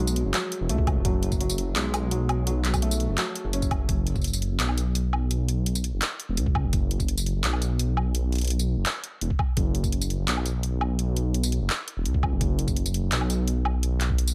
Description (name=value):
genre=half-time drum and bass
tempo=169 BPM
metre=4/4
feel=half-time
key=unclear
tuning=A4 = 440 Hz
part: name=felt-muted upright piano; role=arpeggios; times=0.0-3.9 s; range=F#3 to C#4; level=-34 LUFS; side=equal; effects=vintage 12-bit sampler grit, dub echo
part: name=dark detuned saw bass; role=bass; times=0.0-14.3 s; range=E1 to C#2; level=-27 LUFS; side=equal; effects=none
part: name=drum and bass drum kit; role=drums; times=0.1-14.3 s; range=handclaps, hi-hat, tambourine, woodblock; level=-32 LUFS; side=equal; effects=overdrive
part: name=electronic kick drum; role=drums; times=0.8-4.2, 6.5-7.1, 9.3-9.9, 12.1-14.2 s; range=none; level=-28 LUFS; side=equal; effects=none
room=digital ambience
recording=none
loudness=-26 LUFS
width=mono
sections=0.0-3.9 A section; 3.9-14.3 A section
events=drop 0.0-3.9, 3.9-14.3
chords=0.0 F#m; 3.9 N.C.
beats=0.34 0.69 | 1.05 1.40 1.76 2.11 | 2.47 2.82 3.18 3.53 | 3.89 4.24 4.60 4.95 | 5.31 5.66 6.02 6.37 | 6.73 7.08 7.44 7.79 | 8.15 8.50 8.86 9.21 | 9.57 9.92 10.28 10.63 | 10.99 11.34 11.70 12.05 | 12.41 12.76 13.12 13.47 | 13.83 14.18